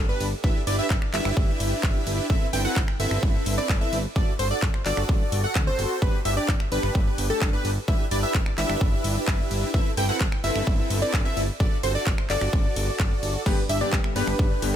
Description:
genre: EDM, festival progressive house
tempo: 129 BPM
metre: 4/4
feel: straight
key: G major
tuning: A4 = 441 Hz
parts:
  - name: plucky unison lead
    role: arpeggios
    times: 0.0-14.7 s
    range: A4 to G5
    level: -30 LUFS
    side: equal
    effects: sidechain pumping, digital delay
  - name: supersaw chords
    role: riff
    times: 0.0-14.7 s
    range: C4 to G5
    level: -29 LUFS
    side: equal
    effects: sidechain pumping, digital delay
  - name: fat analog bass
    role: bass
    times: 0.0-14.8 s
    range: G1 to D2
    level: -28 LUFS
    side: equal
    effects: sidechain pumping
  - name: house drum kit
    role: drums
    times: 0.2-14.7 s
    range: crash cymbal, finger snaps, handclaps, hi-hat, ride cymbal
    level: -32 LUFS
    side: equal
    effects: none
  - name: electronic kick drum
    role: drums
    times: 0.4-14.5 s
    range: none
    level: -23 LUFS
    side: equal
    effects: none
  - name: bright grand piano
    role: accompaniment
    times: 13.5-14.8 s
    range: G2 to G4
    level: -30 LUFS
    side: left 5 dB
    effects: sidechain pumping, digital delay
room: little or no reverb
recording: none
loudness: -21 LUFS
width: side -10 dB against mid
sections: 0.0-13.5 A section; 13.5-14.8 A section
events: drop 0.0-13.5, 13.5-14.8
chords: 0.4 Em7/G; 2.3 Amadd9/G; 4.2 D/G; 6.0 G; 7.9 Em7/G; 9.7 Amadd9/G; 11.6 D/G; 13.5 G

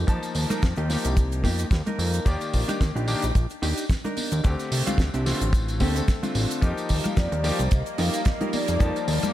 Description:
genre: nu-disco, nu disco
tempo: 110 BPM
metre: 4/4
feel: swing 56% on 16ths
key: F mixolydian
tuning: A4 = 439 Hz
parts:
  - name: mellow electric guitar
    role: riff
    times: 0.0-9.0 s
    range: Bb3 to Bb4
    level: -32 LUFS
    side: right 2 dB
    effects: lush chorus, ping-pong delay
  - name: fat analog bass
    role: bass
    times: 0.0-9.3 s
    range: A1 to F2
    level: -26 LUFS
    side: equal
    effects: none
  - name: clear electric grand piano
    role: accompaniment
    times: 0.1-9.3 s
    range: D3 to A5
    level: -31 LUFS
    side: left 3 dB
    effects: vintage 12-bit sampler grit, sidechain pumping, ping-pong delay
  - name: damped 70s drum kit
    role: drums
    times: 0.1-9.3 s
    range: hi-hat, rim click, snare drum, tambourine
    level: -32 LUFS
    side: right 2 dB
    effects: none
  - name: kick drum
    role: drums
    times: 0.1-8.9 s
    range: none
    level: -22 LUFS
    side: equal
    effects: none
  - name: cabasa and congas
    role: percussion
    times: 0.1-9.3 s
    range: none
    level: -34 LUFS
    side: left 3 dB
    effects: none
  - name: vibraphone with soft mallets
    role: melody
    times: 6.6-9.3 s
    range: C5 to F5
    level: -31 LUFS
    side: left 1 dB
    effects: vintage 12-bit sampler grit, analog delay
  - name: lush unison pad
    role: sustained chords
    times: 6.6-9.3 s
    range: F3 to Bb3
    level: -33 LUFS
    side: equal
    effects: chorus, phaser, sidechain pumping
room: light reverb, studio reverb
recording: none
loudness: -22 LUFS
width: side -13 dB against mid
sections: 0.0-6.6 A section; 6.6-9.3 B section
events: drop 6.6-9.3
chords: 0.0 F9sus4; 2.3 Ebmaj7; 4.4 Dm7; 6.6 F9sus4

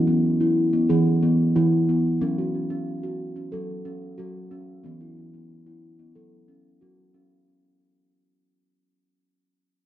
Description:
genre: world meditative, meditative tuned percussion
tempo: 91 BPM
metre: 4/4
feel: straight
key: F# minor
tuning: A4 = 440 Hz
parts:
  - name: steel tongue drum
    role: solo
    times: 0.0-7.5 s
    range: E3 to A4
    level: -21 LUFS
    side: equal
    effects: tape echo
room: wet echo chamber reverb, RT60 1.4 s, studio reverb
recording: cassette tape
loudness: -20 LUFS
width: side -13 dB against mid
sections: 0.0-7.5 A section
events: fade-out 0.0-7.5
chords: 0.0 E; 2.2 F#m; 4.8 E5; 6.2 F#m

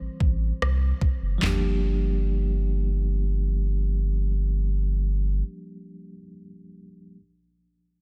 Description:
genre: contemporary R&B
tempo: 74 BPM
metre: 4/4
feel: straight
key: G dorian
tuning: A4 = 440 Hz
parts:
  - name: bell-like tine electric piano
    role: accompaniment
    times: 0.0-7.2 s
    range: E3 to C5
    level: -36 LUFS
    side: equal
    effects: none
  - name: warm sub bass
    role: bass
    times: 0.0-5.4 s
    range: F#1 to C2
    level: -26 LUFS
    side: equal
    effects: none
  - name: smooth R&B drum kit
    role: drums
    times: 0.2-1.6 s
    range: handclaps, kick drum, rim click, snare drum, toms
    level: -28 LUFS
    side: equal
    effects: none
room: digital ambience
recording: none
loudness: -25 LUFS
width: mono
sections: 0.0-1.4 A section; 1.4-4.7 B section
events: tine electric piano solo 0.0-1.4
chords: 0.0 Am7; 1.4 Gm7

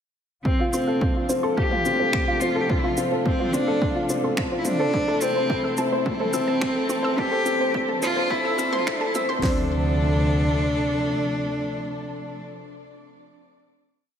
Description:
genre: piano and strings electronica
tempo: 107 BPM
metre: 4/4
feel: straight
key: D minor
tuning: A4 = 440 Hz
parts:
  - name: clear cello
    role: melody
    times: 0.4-12.4 s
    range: C4 to G4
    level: -26 LUFS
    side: equal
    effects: low-pass filter, ping-pong delay, shimmer reverb
  - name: dark studio string section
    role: sustained chords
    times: 0.5-12.4 s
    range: C3 to A4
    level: -31 LUFS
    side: left 1 dB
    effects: low-pass filter, shimmer reverb
  - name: dark upright piano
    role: riff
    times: 0.5-14.2 s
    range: C4 to C5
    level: -25 LUFS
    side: left 1 dB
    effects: ping-pong delay, shimmer reverb
  - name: warm symphonic double bass section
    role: bass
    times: 0.5-11.1 s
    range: A1 to D2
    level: -30 LUFS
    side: right 1 dB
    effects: none
  - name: deep house drum kit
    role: drums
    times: 0.5-9.6 s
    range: hi-hat, kick drum, snare drum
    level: -26 LUFS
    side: equal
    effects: overdrive
  - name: analog pluck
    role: arpeggios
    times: 0.6-9.7 s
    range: C5 to E6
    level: -33 LUFS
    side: right 2 dB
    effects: chorus, sidechain pumping, ping-pong delay, shimmer reverb
  - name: deep house drum kit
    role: drums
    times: 0.7-9.3 s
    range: finger snaps, shaker, toms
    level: -32 LUFS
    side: right 1 dB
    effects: overdrive
room: moderate concert hall reverb, RT60 1.8 s, studio reverb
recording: high-pass filter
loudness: -20 LUFS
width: side -8 dB against mid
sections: 0.5-9.4 build; 9.4-11.7 final chord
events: build-up 0.5-9.4; filter sweep on string section 0.5-9.4; filter sweep on synth arpeggio sound 0.5-9.4; filter sweep 0.5-9.4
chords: 0.5 Dm7; 4.9 Am; 9.4 Dm7

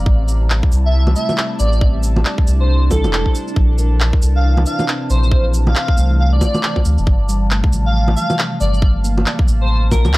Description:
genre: future garage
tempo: 137 BPM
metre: 4/4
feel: swing 60% on 16ths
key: G dorian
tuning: A4 = 439 Hz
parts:
  - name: mellow tine electric piano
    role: accompaniment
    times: 0.0-10.2 s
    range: E3 to Bb4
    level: -27 LUFS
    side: equal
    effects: medium stereo tremolo, sidechain pumping, analog delay
  - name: warbly tape-like pad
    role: sustained chords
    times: 0.0-10.2 s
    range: C3 to A5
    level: -27 LUFS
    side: equal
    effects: chorus, built-in reverb, phaser, vintage 12-bit sampler grit, sidechain pumping
  - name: soft dub sub bass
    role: bass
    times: 0.0-10.2 s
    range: E1 to D2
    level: -14 LUFS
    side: equal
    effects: sidechain pumping
  - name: electronic kick drum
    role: drums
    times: 0.1-10.0 s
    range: none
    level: -15 LUFS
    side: equal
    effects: none
  - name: electronic cabasa, shaker, handclaps and bongos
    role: drums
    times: 0.3-10.2 s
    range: none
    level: -21 LUFS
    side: right 1 dB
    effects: none
  - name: airy dreamy lead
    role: melody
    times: 0.9-10.2 s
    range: A4 to F5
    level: -24 LUFS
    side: equal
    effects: chorus, cassette tape, analog delay
room: digital ambience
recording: dry, gritty hardware recording, transformer saturation, vinyl crackle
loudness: -13 LUFS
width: side -19 dB against mid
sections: 0.0-7.1 A section; 7.1-10.2 A section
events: none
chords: 0.1 Am7; 3.6 Bbmaj9#11; 7.1 Gm11

